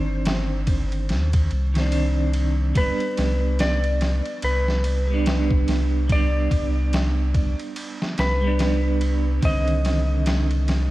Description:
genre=trip hop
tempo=72 BPM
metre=4/4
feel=swing 59% on 16ths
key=C harmonic minor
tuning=A4 = 445 Hz
part: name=clean lap steel guitar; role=melody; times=0.0-10.9 s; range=B4 to Eb5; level=-29 LUFS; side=left 1 dB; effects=tape echo
part: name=clean electric guitar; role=accompaniment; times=0.0-10.9 s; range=D3 to D4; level=-27 LUFS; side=right 2 dB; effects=tremolo, tape echo
part: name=warm sub bass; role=bass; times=0.0-10.9 s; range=G1 to Eb2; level=-22 LUFS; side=equal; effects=none
part: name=trip hop sampler-style drum kit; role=drums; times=0.3-10.9 s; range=kick drum, ride cymbal, snare drum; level=-26 LUFS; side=equal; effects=overdrive, studio reverb
room=digital ambience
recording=dark, warm production, vinyl crackle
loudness=-19 LUFS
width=side -17 dB against mid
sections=0.0-10.9 A section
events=none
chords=0.0 Cmadd9; 2.8 G/C; 9.4 Cmadd9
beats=0.26 1.10 1.93 | 2.76 3.60 4.43 5.26 | 6.10 6.93 7.76 8.60 | 9.43 10.26

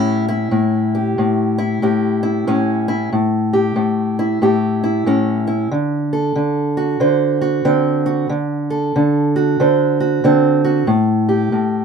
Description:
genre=blues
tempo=93 BPM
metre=4/4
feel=swing 63% on 8ths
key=unclear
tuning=A4 = 438 Hz
part: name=fingerpicked steel-string acoustic guitar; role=solo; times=0.0-11.8 s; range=A2 to C5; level=-14 LUFS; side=equal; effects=none
room=moderate small room ambience, RT60 0.5 s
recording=minimal, uncompressed stereo recording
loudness=-14 LUFS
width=side -6 dB against mid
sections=0.0-11.8 A section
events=none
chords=0.0 A7; 5.7 D7; 10.9 A7(no3)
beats=| 0.52 1.17 1.82 2.46 | 3.11 3.76 4.41 5.05 | 5.70 6.35 7.00 7.64 | 8.29 8.94 9.58 10.23 | 10.88 11.52

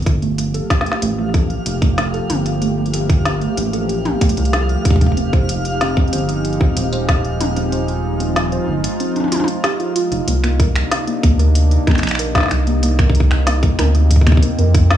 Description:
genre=IDM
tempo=94 BPM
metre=4/4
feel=straight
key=C minor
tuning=A4 = 443 Hz
part: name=organic electronic drum kit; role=drums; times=0.0-15.0 s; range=finger snaps, hi-hat, snare drum, toms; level=-22 LUFS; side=left 1 dB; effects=analog delay
part: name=warbly tape-like pad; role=sustained chords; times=0.3-15.0 s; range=C3 to G4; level=-22 LUFS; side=equal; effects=chorus, built-in reverb
part: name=rubbery square bass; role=bass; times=0.1-15.0 s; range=Eb1 to F2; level=-18 LUFS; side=equal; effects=none
part: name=electronic kick drum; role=drums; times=0.1-14.9 s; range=none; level=-14 LUFS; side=equal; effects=none
part: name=twinkling granular texture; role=texture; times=0.6-10.3 s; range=F5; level=-30 LUFS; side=equal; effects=built-in reverb
part: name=soft round pluck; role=arpeggios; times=0.2-14.7 s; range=A3 to C5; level=-24 LUFS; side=right 3 dB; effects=chorus, tape echo
room=little or no reverb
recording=dry, gritty hardware recording, transformer saturation, cassette tape, small room ambience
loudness=-14 LUFS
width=side -11 dB against mid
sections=0.0-10.3 A section; 10.3-15.0 B section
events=kick drops out 7.7-10.3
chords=0.1 Gm9; 5.2 Fm9; 10.3 Cm9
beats=| 0.06 0.70 1.34 1.98 | 2.62 3.26 3.89 4.53 | 5.17 5.81 6.45 7.09 | 7.72 8.36 9.00 9.64 | 10.28 10.91 11.55 12.19 | 12.83 13.47 14.11 14.74

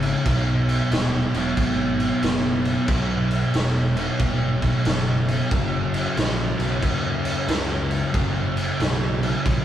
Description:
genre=stoner and doom metal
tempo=91 BPM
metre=4/4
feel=swing 65% on 8ths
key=unclear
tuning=A4 = 440 Hz
part: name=thick fuzz guitar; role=riff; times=0.0-9.6 s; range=C#2 to B3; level=-23 LUFS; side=equal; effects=distortion
part: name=picked electric bass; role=bass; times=0.0-9.6 s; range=D#1 to D#2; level=-28 LUFS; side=right 1 dB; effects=overdrive
part: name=raw garage drum kit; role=drums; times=0.0-9.6 s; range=crash cymbal, kick drum, snare drum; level=-24 LUFS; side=equal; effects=none
room=light reverb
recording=band playing live in one room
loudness=-20 LUFS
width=side -11 dB against mid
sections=0.0-9.6 A section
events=none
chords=0.3 B; 5.5 F#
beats=| 0.25 0.91 1.57 2.22 | 2.88 3.54 4.20 4.85 | 5.51 6.17 6.83 7.48 | 8.14 8.79 9.45

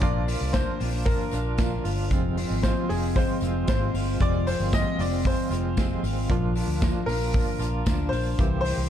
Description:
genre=jangly indie pop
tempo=115 BPM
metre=4/4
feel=straight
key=F dorian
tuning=A4 = 440 Hz
part: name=bright upright piano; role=melody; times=0.0-8.9 s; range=Ab4 to Eb5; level=-31 LUFS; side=left 2 dB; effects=tape echo
part: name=direct-recorded clean electric guitar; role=accompaniment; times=0.0-8.9 s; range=F2 to G4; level=-33 LUFS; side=right 4 dB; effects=tremolo
part: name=twelve-string electric guitar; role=arpeggios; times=0.0-8.9 s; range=E3 to F4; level=-30 LUFS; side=left 2 dB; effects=none
part: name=vintage muted fingered electric bass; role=bass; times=0.0-8.9 s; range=F1 to D2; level=-28 LUFS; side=equal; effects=none
part: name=modern studio drum kit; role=drums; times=0.0-8.8 s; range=hi-hat, kick drum, snare drum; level=-27 LUFS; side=equal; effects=none
part: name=tambourine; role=percussion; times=0.3-8.8 s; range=none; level=-48 LUFS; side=left 4 dB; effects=none
room=light reverb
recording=dark, warm production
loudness=-22 LUFS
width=side -10 dB against mid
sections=0.0-8.9 A section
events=none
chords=0.0 Bb; 2.1 Fm; 6.3 Bb; 8.4 C7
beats=| 0.02 0.54 1.06 1.59 | 2.11 2.63 3.16 3.68 | 4.20 4.73 5.25 5.77 | 6.29 6.82 7.34 7.86 | 8.38

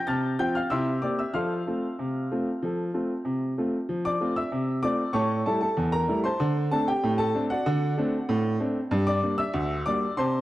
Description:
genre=ragtime piano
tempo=95 BPM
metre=2/4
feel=straight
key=F major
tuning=A4 = 440 Hz
part: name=clear baby grand piano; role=solo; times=0.0-10.4 s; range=D2 to A6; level=-24 LUFS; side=equal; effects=analog delay
room=wet spring reverb, RT60 1.3 s, small room ambience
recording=dark, warm production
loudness=-24 LUFS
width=side -15 dB against mid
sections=0.0-3.9 A section; 3.9-10.4 B section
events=none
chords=0.1 F/C; 0.7 C7; 1.3 F; 5.1 A7; 6.4 D7; 8.9 Gm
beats=| 0.06 0.69 | 1.33 1.97 | 2.60 3.24 | 3.88 4.51 | 5.14 5.77 | 6.40 7.03 | 7.66 8.28 | 8.91 9.54 | 10.17

